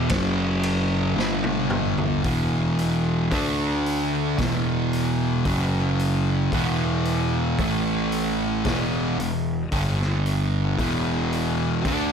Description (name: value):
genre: stoner and doom metal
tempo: 56 BPM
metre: 4/4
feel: straight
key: E minor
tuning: A4 = 438 Hz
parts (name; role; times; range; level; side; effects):
- fuzz guitar; riff; 0.0-12.1 s; E2 to D4; -22 LUFS; equal; distortion
- fuzz picked electric bass; bass; 0.0-12.1 s; E1 to D2; -29 LUFS; equal; overdrive
- raw garage drum kit; drums; 0.1-12.1 s; hi-hat, kick drum, ride cymbal, snare drum, toms; -30 LUFS; left 1 dB; none
room: light reverb, small room ambience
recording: none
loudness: -21 LUFS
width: side -7 dB against mid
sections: 0.0-2.2 A section; 2.2-12.1 B section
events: drum fill 1.2-2.2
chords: 0.1 F#5; 1.2 G5; 2.2 E5; 3.3 D5; 4.4 E5; 5.4 F#5; 6.5 E5; 7.6 A5; 8.6 E5; 9.7 G5; 10.8 E5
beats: 0.11 1.18 | 2.24 3.31 4.38 5.45 | 6.51 7.58 8.65 9.71 | 10.78 11.85